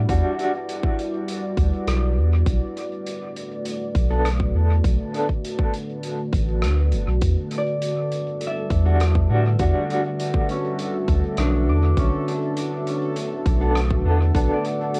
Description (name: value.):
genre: ambient dub.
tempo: 101 BPM.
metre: 4/4.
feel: straight.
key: B minor.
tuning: A4 = 439 Hz.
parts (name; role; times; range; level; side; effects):
deep dark ambient pad; sustained chords; 0.0-15.0 s; D3 to F#5; -30 LUFS; equal; chorus, built-in reverb.
warm sub bass; bass; 0.0-14.5 s; F#1 to A2; -22 LUFS; equal; none.
mellow electric guitar; stabs; 0.1-0.5, 4.1-5.3, 8.9-10.0, 13.6-14.6 s; G3 to A4; -29 LUFS; equal; tremolo, dub echo.
electronic kick drum; drums; 0.1-14.5 s; none; -25 LUFS; equal; cassette tape.
soft-mallet drum kit; drums; 0.1-15.0 s; hi-hat, rim click; -38 LUFS; equal; cassette tape, dub echo.
bubbling stepped-filter texture; texture; 7.2-15.0 s; A3 to A4; -37 LUFS; equal; chorus, built-in reverb.
concert harp; arpeggios; 7.6-15.0 s; C#4 to D6; -32 LUFS; equal; tape echo.
room: light reverb.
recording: home recording on cassette.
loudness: -22 LUFS.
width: mono.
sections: 0.0-15.0 A section.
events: none.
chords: 0.0 Em9; 2.5 Bm7; 7.2 Em9; 12.0 Bm7.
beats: | 0.09 0.69 1.28 1.87 | 2.47 3.06 3.66 4.25 | 4.84 5.44 6.03 6.63 | 7.22 7.81 8.41 9.00 | 9.60 10.19 10.78 11.38 | 11.97 12.57 13.16 13.76 | 14.35 14.94.